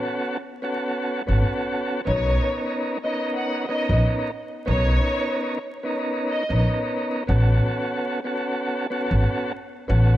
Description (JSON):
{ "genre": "hip hop, boom-bap hip-hop", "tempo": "92 BPM", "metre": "4/4", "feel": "swing 59% on 16ths", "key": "B major", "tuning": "A4 = 441 Hz", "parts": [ { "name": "tonewheel organ", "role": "accompaniment", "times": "0.0-10.2 s", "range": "B3 to A#4", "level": "-25 LUFS", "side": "equal", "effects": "fast rotary speaker, cassette tape, high-pass filter, low-pass filter" }, { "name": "upright bass", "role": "bass", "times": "1.3-10.2 s", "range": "G#1 to B1", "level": "-19 LUFS", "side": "equal", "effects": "none" }, { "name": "warm studio violin section", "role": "melody", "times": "2.1-6.6 s", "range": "C#5 to F#5", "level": "-28 LUFS", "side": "left 1 dB", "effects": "high-pass filter, low-pass filter, digital delay" } ], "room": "light reverb, small room ambience", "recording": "dark, warm production, vinyl crackle", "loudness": "-21 LUFS", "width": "side -14 dB against mid", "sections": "0.0-10.2 A section", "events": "none", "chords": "0.0 A69; 2.1 Bmaj9; 7.3 A69", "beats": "0.11 0.76 1.42 | 2.07 2.72 3.37 4.02 | 4.68 5.33 5.98 6.63 | 7.29 7.94 8.59 9.24 | 9.89" }